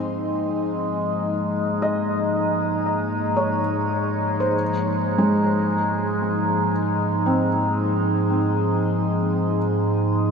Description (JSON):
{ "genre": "ambient", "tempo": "free time", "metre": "none", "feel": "none", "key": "unclear", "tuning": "A4 = 439 Hz", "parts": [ { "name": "warbly tape-like pad", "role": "sustained chords", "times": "0.0-10.3 s", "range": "Ab2 to Eb5", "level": "-24 LUFS", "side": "equal", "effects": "chorus, built-in reverb" }, { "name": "felt-muted upright piano", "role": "arpeggios", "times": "0.0-10.3 s", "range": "Ab3 to Eb5", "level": "-26 LUFS", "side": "right 1 dB", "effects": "tape echo, shimmer reverb" }, { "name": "overtone-sweeping drone", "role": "drone", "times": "0.0-10.3 s", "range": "Ab3 to Eb4", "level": "-24 LUFS", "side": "left 1 dB", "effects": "chorus, built-in reverb, phaser" } ], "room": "wet huge ambient reverb, RT60 9.6 s", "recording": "none", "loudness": "-20 LUFS", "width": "side -5 dB against mid", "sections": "0.0-10.3 A section", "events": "fade-in on ambient pad 0.0-10.3", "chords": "0.0 Ab69", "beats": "free time" }